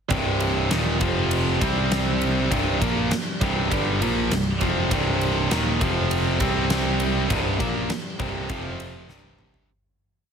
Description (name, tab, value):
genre	hard rock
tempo	100 BPM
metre	4/4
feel	straight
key	C minor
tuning	A4 = 440 Hz
part	tonewheel organ	sustained chords	0.1-9.7 s	F3 to D5	-36 LUFS	equal	none
part	tight distorted guitar	riff	0.1-9.7 s	C2 to C4	-26 LUFS	left 12 dB	distortion
part	tight distorted guitar	riff	0.1-9.7 s	C2 to C4	-26 LUFS	right 12 dB	distortion
part	modern bright picked electric bass	bass	0.1-9.6 s	C1 to C2	-27 LUFS	equal	none
part	huge arena drum kit	drums	0.1-9.7 s	kick drum, ride cymbal, snare drum, toms	-27 LUFS	left 1 dB	none
room	light reverb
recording	heavily compressed radio sound, faint mains hum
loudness	-20 LUFS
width	side -7 dB against mid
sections	0.1-9.7 riff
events	fade-out 7.3-9.7; drum fill 9.1-9.7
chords	0.1 Cm; 1.0 F5; 1.6 Cm; 5.8 F5; 6.4 C5; 8.5 F5; 9.1 C5